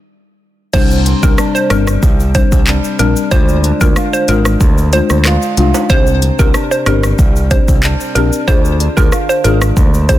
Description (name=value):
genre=dancehall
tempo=93 BPM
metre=4/4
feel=straight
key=unclear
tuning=A4 = 444 Hz
part: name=hollow square pluck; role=melody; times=0.7-10.2 s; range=Bb4 to C5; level=-18 LUFS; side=right 2 dB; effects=chorus, ping-pong delay
part: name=folk marimba with medium mallets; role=accompaniment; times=0.7-10.2 s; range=G3 to Ab4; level=-18 LUFS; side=left 7 dB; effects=sidechain pumping
part: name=flamenco guitar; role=arpeggios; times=0.7-10.2 s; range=C3 to F4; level=-22 LUFS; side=right 4 dB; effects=none
part: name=modern bright picked electric bass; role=bass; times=0.7-10.2 s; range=G1 to D2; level=-14 LUFS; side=equal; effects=none
part: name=afro-pop drum kit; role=drums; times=0.7-10.2 s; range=crash cymbal, handclaps, hi-hat, kick drum, rim click, shaker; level=-13 LUFS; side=equal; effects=soft clipping on snare
part: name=egg shaker and timbales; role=percussion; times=0.7-10.2 s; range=none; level=-29 LUFS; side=right 4 dB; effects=none
room=little or no reverb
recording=dense, heavily limited modern master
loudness=-9 LUFS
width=side -14 dB against mid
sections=0.7-10.2 A section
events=stop 0.0-0.7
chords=0.0 N.C.; 0.7 Csus2; 3.3 Ddim; 5.9 Csus2; 8.5 Ddim